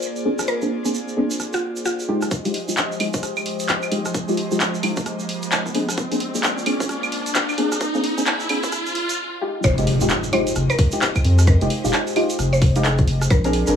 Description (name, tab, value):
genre	UK garage, two-step garage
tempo	131 BPM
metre	4/4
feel	swing 61% on 16ths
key	F dorian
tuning	A4 = 445 Hz
part	airy breathy pad	sustained chords	0.0-13.8 s	F3 to F5	-30 LUFS	equal	chorus, phaser, sidechain pumping
part	deep mellow chord stab	stabs	0.0-13.7 s	Ab3 to Bb4	-24 LUFS	equal	chorus, dub echo
part	tube shaker	percussion	0.0-13.7 s	none	-31 LUFS	right 4 dB	none
part	garage drum kit	drums	0.4-13.6 s	claves, handclaps, hi-hat, rim click	-24 LUFS	equal	small room ambience
part	mallet-like synth pluck	melody	0.5-2.2, 9.6-13.5 s	F4 to C5	-26 LUFS	left 1 dB	chorus, dub echo
part	electronic kick drum	drums	2.3-13.4 s	none	-19 LUFS	equal	high-pass filter on kick, small room ambience
part	riser and impact	sound effects	4.0-11.5 s	none	-28 LUFS	equal	none
part	saturated sub bass	bass	9.6-13.7 s	Eb1 to F2	-18 LUFS	equal	none
room	moderate plate reverb, RT60 1.0 s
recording	high-pass filter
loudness	-18 LUFS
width	side -8 dB against mid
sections	0.0-2.3 A section; 2.3-9.6 B section; 9.6-13.8 C section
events	filter sweep on synth stab 0.0-2.3, 2.3-9.6; build-up 2.3-9.6; riser 4.0-9.2; break 9.2-9.6; drop 9.6-13.8; impact 9.6-11.5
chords	0.0 Bb9; 2.1 Fm9; 6.0 Bb9; 9.4 Fm9